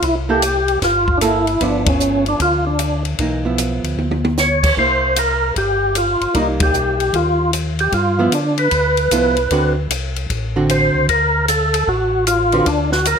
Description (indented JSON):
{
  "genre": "soul jazz organ trio",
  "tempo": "152 BPM",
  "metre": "4/4",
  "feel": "swing 65% on 8ths",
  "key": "unclear",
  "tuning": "A4 = 441 Hz",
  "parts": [
    { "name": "percussive tonewheel organ", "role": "melody", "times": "0.0-13.2 s", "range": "C#4 to C#5", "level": "-16 LUFS", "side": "equal", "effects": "slow rotary speaker, overdrive, chorus vibrato, plate reverb" },
    { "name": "mellow tonewheel organ", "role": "bass", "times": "0.0-13.2 s", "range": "G1 to D3", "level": "-22 LUFS", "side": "equal", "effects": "chorus vibrato, slow rotary speaker" },
    { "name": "compact cocktail drum kit", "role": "drums", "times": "0.0-13.2 s", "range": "crash cymbal, hi-hat, kick drum, ride cymbal, snare drum, toms", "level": "-22 LUFS", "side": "left 2 dB", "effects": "none" },
    { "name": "archtop guitar, miked and amplified", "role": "accompaniment", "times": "0.3-12.7 s", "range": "D3 to B4", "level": "-20 LUFS", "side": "right 3 dB", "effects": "none" }
  ],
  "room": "moderate studio reverb, RT60 0.8 s",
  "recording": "none",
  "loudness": "-14 LUFS",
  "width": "side -6 dB against mid",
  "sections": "0.0-13.2 A section",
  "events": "band accent 1.8, 6.5; drum fill 4.0-4.4",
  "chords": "0.0 C6; 1.6 G6; 4.8 C7; 6.3 Cm7; 7.9 G6; 9.5 D7",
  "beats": "| 0.03 0.43 0.82 1.22 | 1.61 2.01 2.40 2.80 | 3.19 3.58 3.98 4.38 | 4.77 5.16 5.56 5.95 | 6.35 6.74 7.14 7.53 | 7.93 8.32 8.72 9.11 | 9.51 9.90 10.30 10.69 | 11.09 11.48 11.88 12.27 | 12.67 13.06"
}